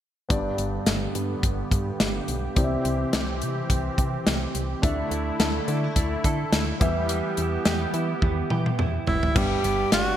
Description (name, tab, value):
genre	1980s-style pop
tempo	106 BPM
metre	4/4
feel	swing 55% on 16ths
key	G major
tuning	A4 = 440 Hz
part	warm grand piano	accompaniment	0.3-10.2 s	G2 to E5	-31 LUFS	left 1 dB	none
part	brassy analog pad	sustained chords	0.3-9.3 s	D3 to G4	-31 LUFS	right 1 dB	chorus
part	solid FM bass	bass	0.3-10.1 s	F#1 to E3	-29 LUFS	equal	none
part	modern studio drum kit	drums	0.3-10.1 s	crash cymbal, hi-hat, kick drum, snare drum, toms	-25 LUFS	equal	gated reverb
part	direct-recorded clean electric guitar	riff	4.8-10.2 s	G3 to A4	-31 LUFS	right 4 dB	analog chorus, digital delay
part	clear tenor saxophone	melody	9.1-10.2 s	E4 to G4	-24 LUFS	right 1 dB	none
room	wet plate reverb, RT60 2.4 s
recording	bright 1980s-style digital production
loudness	-22 LUFS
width	side -11 dB against mid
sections	0.3-9.4 A section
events	drum fill 8.2-9.4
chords	0.3 G; 2.6 C; 4.8 Dsus2; 6.8 Em; 9.4 G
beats	| 0.30 0.87 1.43 2.00 | 2.57 3.13 3.70 4.26 | 4.83 5.40 5.96 6.53 | 7.09 7.66 8.23 8.79 | 9.36 9.92